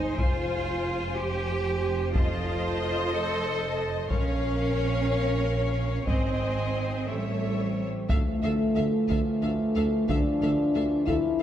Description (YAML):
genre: cinematic, epic orchestral film score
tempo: 61 BPM (dotted quarters)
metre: 6/8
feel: straight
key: F minor, D minor from 8.1 s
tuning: A4 = 439 Hz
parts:
  - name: rich symphonic violin section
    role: melody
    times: 0.0-11.4 s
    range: E5 to A5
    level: -40 LUFS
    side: left 4 dB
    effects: none
  - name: warm symphonic violin section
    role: second line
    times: 0.0-11.2 s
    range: C5 to E5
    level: -37 LUFS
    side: left 4 dB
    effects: none
  - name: warm symphonic viola section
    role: accompaniment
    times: 0.0-11.4 s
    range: A4 to C5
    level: -36 LUFS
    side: right 1 dB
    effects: none
  - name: dark French horn section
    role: sustained chords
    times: 0.0-11.4 s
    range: Ab3 to E5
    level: -29 LUFS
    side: left 2 dB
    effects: none
  - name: rich symphonic cello section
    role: bass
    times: 0.0-11.4 s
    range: D2 to A4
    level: -32 LUFS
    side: right 2 dB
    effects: none
  - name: rich symphonic double bass section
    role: bass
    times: 0.0-11.4 s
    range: F1 to D2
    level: -32 LUFS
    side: right 2 dB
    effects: none
  - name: taiko ensemble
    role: drums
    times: 0.2-11.4 s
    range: none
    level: -29 LUFS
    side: equal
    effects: none
  - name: clear trombone section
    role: sustained chords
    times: 8.1-11.4 s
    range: E3 to F3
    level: -38 LUFS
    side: right 6 dB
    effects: none
  - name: warm tuba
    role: bass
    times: 8.1-11.2 s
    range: D2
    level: -34 LUFS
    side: right 2 dB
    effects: none
room: moderate concert hall reverb, RT60 2.3 s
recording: dark, warm production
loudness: -24 LUFS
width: side -10 dB against mid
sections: 0.0-8.1 A section; 8.1-11.4 B section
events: drum fill 0.0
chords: 0.2 Fm; 2.1 F7; 4.1 Bbm; 6.1 Ab; 7.1 A7; 8.1 Dmadd9